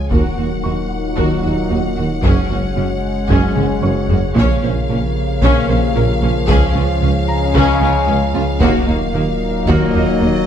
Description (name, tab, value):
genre	cinematic, hybrid orchestral and electronic film score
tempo	113 BPM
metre	4/4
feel	straight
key	unclear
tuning	A4 = 440 Hz
part	rich symphonic violin section	melody	0.0-10.5 s	Eb5 to Ab5	-26 LUFS	left 4 dB	none
part	dark analog pad	sustained chords	0.0-10.5 s	Db3 to Eb5	-26 LUFS	equal	wide subtle chorus
part	mellow French horn section	sustained chords	0.0-10.5 s	C3 to Eb4	-24 LUFS	left 6 dB	none
part	warm trombone section	sustained chords	0.0-10.5 s	Bb2 to Ab3	-24 LUFS	right 2 dB	none
part	pure sine sub bass	bass	0.0-10.5 s	Eb1 to Db2	-23 LUFS	equal	none
part	felt-muted upright piano	texture	0.0-10.5 s	Db5 to Ab6	-32 LUFS	equal	ping-pong delay
part	rich chamber violin section	second line	0.1-10.3 s	Bb3 to Db5	-26 LUFS	left 2 dB	none
part	clear symphonic viola section	accompaniment	0.1-10.3 s	Bb3 to Gb4	-24 LUFS	equal	none
part	thumb-piano-like synth pluck	arpeggios	0.1-10.4 s	Db3 to Bb4	-27 LUFS	left 4 dB	none
part	mellow tuba	bass	0.1-10.3 s	Gb1 to Eb2	-24 LUFS	right 4 dB	none
part	rich chamber cello section	bass	0.1-10.3 s	Db2 to Bb2	-23 LUFS	right 2 dB	none
part	rich symphonic double bass section	bass	0.1-10.3 s	Gb1 to Eb2	-22 LUFS	right 3 dB	none
part	taiko ensemble	drums	0.1-10.2 s	none	-20 LUFS	equal	none
room	moderate scoring stage reverb, RT60 1.9 s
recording	dark, warm production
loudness	-13 LUFS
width	side -9 dB against mid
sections	0.0-10.5 A section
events	drum fill 3.6-4.4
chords	0.1 Ebm; 2.2 Gbsus2; 4.4 Bbmadd9; 6.5 Db; 8.6 Ebm